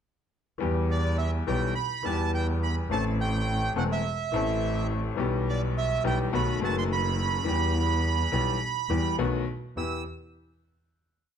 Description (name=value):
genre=tango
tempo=105 BPM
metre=4/4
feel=rubato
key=E minor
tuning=A4 = 436 Hz
part: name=bright upright piano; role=accompaniment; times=0.6-10.0 s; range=E1 to A4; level=-30 LUFS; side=left 6 dB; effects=none
part: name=clear double bass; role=bass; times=0.6-10.0 s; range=E1 to E2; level=-28 LUFS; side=right 1 dB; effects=none
part: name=bandoneon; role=melody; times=0.9-10.0 s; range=D5 to E6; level=-30 LUFS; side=right 6 dB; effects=slapback echo
room=light reverb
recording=close, detailed microphones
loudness=-25 LUFS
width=side -8 dB against mid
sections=0.6-9.8 A section; 9.8-11.4 final chord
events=none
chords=0.6 Em; 2.9 Am; 5.2 Em/B; 6.3 B7; 7.5 Em; 9.2 B7; 9.8 Em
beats=| 0.61 1.18 1.76 2.33 | 2.91 3.48 4.05 4.62 | 5.19 5.76 6.33 6.90 | 7.46 8.04 8.61 9.19 | 9.76